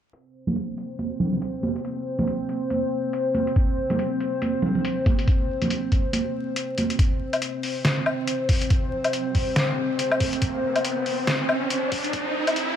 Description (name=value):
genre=deep dubstep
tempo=140 BPM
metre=4/4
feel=swing 59% on 16ths, half-time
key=unclear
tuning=A4 = 440 Hz
part: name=dark analog pad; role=sustained chords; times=0.7-12.8 s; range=C4 to C5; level=-27 LUFS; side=left 1 dB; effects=chorus
part: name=trip hop sampler-style drum kit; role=drums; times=0.1-12.7 s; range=hi-hat, snare drum, woodblock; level=-26 LUFS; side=left 1 dB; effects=none
part: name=congas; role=percussion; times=0.5-6.9 s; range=none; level=-27 LUFS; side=right 2 dB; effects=dub echo
part: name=electronic kick drum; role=drums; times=3.6-12.2 s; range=none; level=-22 LUFS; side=equal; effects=none
part: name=riser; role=sound effects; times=8.3-12.8 s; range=none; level=-30 LUFS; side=right 1 dB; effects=none
room=light reverb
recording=vinyl crackle, high-pass filter, low-pass filter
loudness=-22 LUFS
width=side -9 dB against mid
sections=0.1-7.0 A section; 7.0-12.8 B section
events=filter sweep 0.1-7.0; kick drops out 6.6-7.0; build-up 7.0-12.8; riser 8.3-12.8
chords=none